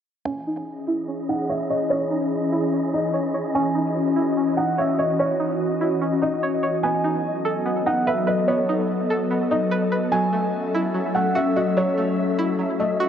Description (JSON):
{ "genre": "hip hop", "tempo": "146 BPM", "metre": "4/4", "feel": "half-time", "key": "C# minor", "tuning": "A4 = 439 Hz", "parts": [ { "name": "felt-muted upright piano", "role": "melody", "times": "0.3-13.0 s", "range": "C#5 to G#5", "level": "-25 LUFS", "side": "equal", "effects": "low-pass filter, analog delay" }, { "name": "ethereal airy pad", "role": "sustained chords", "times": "0.6-13.1 s", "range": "E3 to E5", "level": "-23 LUFS", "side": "left 1 dB", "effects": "ensemble chorus, built-in reverb, low-pass filter" }, { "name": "string-like resonator pluck", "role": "arpeggios", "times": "0.3-13.1 s", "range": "F#3 to C#5", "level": "-27 LUFS", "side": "right 2 dB", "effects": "chorus, low-pass filter, analog delay" }, { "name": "wind-like tuned noise texture", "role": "texture", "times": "0.7-13.1 s", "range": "A3 to E5", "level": "-33 LUFS", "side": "right 1 dB", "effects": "built-in reverb" } ], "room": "moderate lush hall reverb, RT60 2.8 s", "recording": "dry, gritty hardware recording", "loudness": "-20 LUFS", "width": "side -8 dB against mid", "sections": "0.3-13.1 A section", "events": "filter sweep 0.3-13.1", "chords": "0.3 C#madd9; 6.8 B7; 10.1 F#m7" }